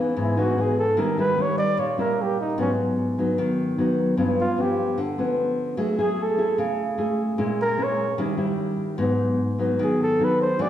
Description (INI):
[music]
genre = bossa nova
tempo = 150 BPM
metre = 4/4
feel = straight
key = unclear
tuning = A4 = 441 Hz
[part]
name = nylon-string guitar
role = accompaniment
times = 0.0-10.7 s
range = G2 to G#4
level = -22 LUFS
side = equal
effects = none
[part]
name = mellow flugelhorn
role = melody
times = 0.2-10.7 s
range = C#4 to D5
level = -24 LUFS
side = equal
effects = none
[sound]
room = wet recital hall reverb, RT60 1.6 s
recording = recorded in a church or concert hall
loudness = -21 LUFS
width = side -11 dB against mid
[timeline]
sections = 0.0-10.7 A section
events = flugelhorn solo 0.0-10.7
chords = 0.0 C#m9; 1.0 D#7b9; 2.6 G#m7; 4.2 G7#11; 5.8 F#m9; 7.4 A#m7b5; 8.2 D#7b9; 9.0 G#m7